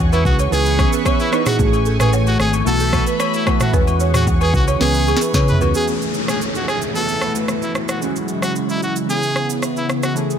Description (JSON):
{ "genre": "afrobeats", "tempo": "112 BPM", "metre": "4/4", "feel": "straight", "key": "unclear", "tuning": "A4 = 439 Hz", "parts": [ { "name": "warm analog keys", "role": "accompaniment", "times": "0.0-10.4 s", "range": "E3 to G#4", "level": "-23 LUFS", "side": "right 1 dB", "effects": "chorus, phaser" }, { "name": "lush unison pad", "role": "sustained chords", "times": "0.0-10.4 s", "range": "C#3 to C#6", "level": "-25 LUFS", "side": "equal", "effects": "chorus, phaser" }, { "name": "fingered electric bass", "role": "bass", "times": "0.0-5.7 s", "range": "G#1 to C#3", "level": "-18 LUFS", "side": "equal", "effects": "none" }, { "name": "brilliant trumpet", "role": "melody", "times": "0.1-10.2 s", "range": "E4 to B4", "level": "-23 LUFS", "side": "equal", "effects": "digital delay" }, { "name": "balafon", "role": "riff", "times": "0.1-5.9 s", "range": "G#4 to C#5", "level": "-24 LUFS", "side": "right 6 dB", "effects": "digital delay" }, { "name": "afro-pop drum kit", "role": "drums", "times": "0.1-10.4 s", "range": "kick drum, rim click, shaker, snare drum, toms", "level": "-21 LUFS", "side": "equal", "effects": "none" }, { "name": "agogo bells and woodblock", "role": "percussion", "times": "0.1-5.7 s", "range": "none", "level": "-27 LUFS", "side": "left 12 dB", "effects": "none" }, { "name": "downlifter", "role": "sound effects", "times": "5.9-10.2 s", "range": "none", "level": "-28 LUFS", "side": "equal", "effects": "none" } ], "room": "light reverb, digital ambience", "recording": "none", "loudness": "-15 LUFS", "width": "side -8 dB against mid", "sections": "0.0-5.9 A section; 5.9-10.4 B section", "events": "drum fill 4.8-5.9", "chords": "0.0 E69; 0.5 C#m7; 1.6 Amaj7; 2.7 B7sus4; 3.7 C#m7; 5.9 Amaj7; 6.9 B7sus4; 8.0 E69; 9.1 C#m7" }